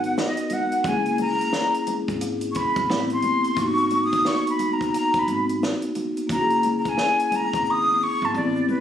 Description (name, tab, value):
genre	hip hop, jazz-hop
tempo	88 BPM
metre	4/4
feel	swing 63% on 16ths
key	unclear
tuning	A4 = 440 Hz
part	breathy jazz flute	melody	0.0-8.8 s	B4 to D#6	-22 LUFS	equal	none
part	vibraphone with soft mallets	accompaniment	0.0-8.8 s	G#3 to A#4	-25 LUFS	left 2 dB	none
part	upright bass	bass	0.0-8.8 s	F#1 to A1	-31 LUFS	equal	none
part	compact cocktail drum kit	drums	0.0-7.7 s	hi-hat, kick drum, snare drum	-30 LUFS	right 1 dB	none
part	congas and egg shaker	percussion	0.0-8.8 s	none	-35 LUFS	right 5 dB	none
room	moderate studio reverb, RT60 0.5 s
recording	recorded on a phone in the room, studio reverb, compression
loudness	-20 LUFS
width	side -10 dB against mid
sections	0.0-8.8 A section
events	flute solo 0.0-8.8; drum fill 7.7-8.8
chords	0.0 G#m9; 0.8 F#9; 2.9 Am9; 3.6 G#m9; 6.3 F#9